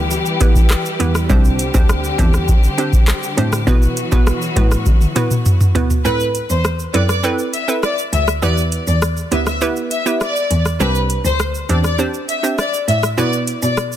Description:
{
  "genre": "dancehall",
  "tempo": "101 BPM",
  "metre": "4/4",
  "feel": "straight",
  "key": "E minor",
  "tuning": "A4 = 437 Hz",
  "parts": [
    { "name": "warm studio string section", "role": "sustained chords", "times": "0.0-6.0 s", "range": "D3 to B4", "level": "-23 LUFS", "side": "left 2 dB", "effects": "sidechain pumping" },
    { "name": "booming analog drum machine", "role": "drums", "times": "0.1-14.0 s", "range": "handclaps, hi-hat, kick drum, rim click, shaker, toms", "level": "-16 LUFS", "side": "equal", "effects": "soft clipping on snare" },
    { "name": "bongos", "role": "percussion", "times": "0.1-5.9 s", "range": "none", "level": "-33 LUFS", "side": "left 7 dB", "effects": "none" },
    { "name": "hollow square pluck", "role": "accompaniment", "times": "0.4-13.7 s", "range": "B3 to C5", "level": "-22 LUFS", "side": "right 4 dB", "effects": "chorus, sidechain pumping" },
    { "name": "rich cello", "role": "bass", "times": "1.0-13.8 s", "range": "C2 to B2", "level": "-19 LUFS", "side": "equal", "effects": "none" },
    { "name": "rich studio violin section", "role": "melody", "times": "6.0-13.7 s", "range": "B4 to E5", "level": "-20 LUFS", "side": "left 1 dB", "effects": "ping-pong delay" }
  ],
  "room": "studio reverb",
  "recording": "dense, heavily limited modern master",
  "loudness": "-14 LUFS",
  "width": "side -12 dB against mid",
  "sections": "0.0-6.0 A section; 6.0-14.0 B section",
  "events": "drum fill 4.9-6.0; break 6.0-14.0",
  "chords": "0.0 Em; 1.3 Csus2; 3.7 Bsus4; 6.0 Amadd9; 8.4 Em; 10.8 Csus2; 13.2 Bsus4",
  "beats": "0.11 0.70 | 1.30 1.89 2.49 3.08 | 3.67 4.27 4.86 5.46 | 6.05 6.64 7.24 7.83 | 8.43 9.02 9.62 10.21 | 10.80 11.40 11.99 12.59 | 13.18 13.77"
}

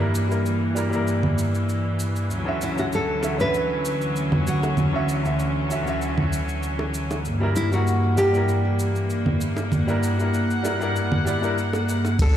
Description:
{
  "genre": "sunset chillout",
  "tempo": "97 BPM",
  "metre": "4/4",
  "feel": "swing 53% on 16ths",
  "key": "unclear",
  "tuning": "A4 = 440 Hz",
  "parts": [
    { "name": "bright concert grand piano", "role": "accompaniment", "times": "0.0-12.4 s", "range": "D3 to E5", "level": "-28 LUFS", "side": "left 1 dB", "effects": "auto-pan, ping-pong delay" },
    { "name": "clear studio string section", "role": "sustained chords", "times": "0.0-12.4 s", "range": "D2 to F#5", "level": "-23 LUFS", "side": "equal", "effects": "none" },
    { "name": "smooth R&B drum kit", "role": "drums", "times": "0.1-12.3 s", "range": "cabasa, congas, crash cymbal, hi-hat", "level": "-27 LUFS", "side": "right 1 dB", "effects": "none" },
    { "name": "nylon-string guitar", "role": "melody", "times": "2.6-12.4 s", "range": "E4 to B4", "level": "-25 LUFS", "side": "equal", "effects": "ping-pong delay" },
    { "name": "bongos", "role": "percussion", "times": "3.2-12.2 s", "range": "none", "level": "-32 LUFS", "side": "right 2 dB", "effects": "none" },
    { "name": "round analog bass", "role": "bass", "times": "12.2-12.4 s", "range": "D2", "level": "-17 LUFS", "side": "equal", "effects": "none" },
    { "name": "electronic kick drum", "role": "drums", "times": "12.2-12.3 s", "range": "none", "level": "-25 LUFS", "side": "equal", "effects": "none" }
  ],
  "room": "moderate lush hall reverb, RT60 2.1 s",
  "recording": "played on a big sound system in a bare room, large studio reverb",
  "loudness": "-20 LUFS",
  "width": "side -10 dB against mid",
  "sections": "0.0-12.2 A section",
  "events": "none",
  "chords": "0.0 Gm6; 2.3 Dmaj9; 7.2 Gm6",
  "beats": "0.44 1.06 1.68 | 2.30 2.92 3.54 4.16 | 4.77 5.39 6.01 6.63 | 7.25 7.87 8.48 9.10 | 9.72 10.34 10.96 11.58 | 12.20"
}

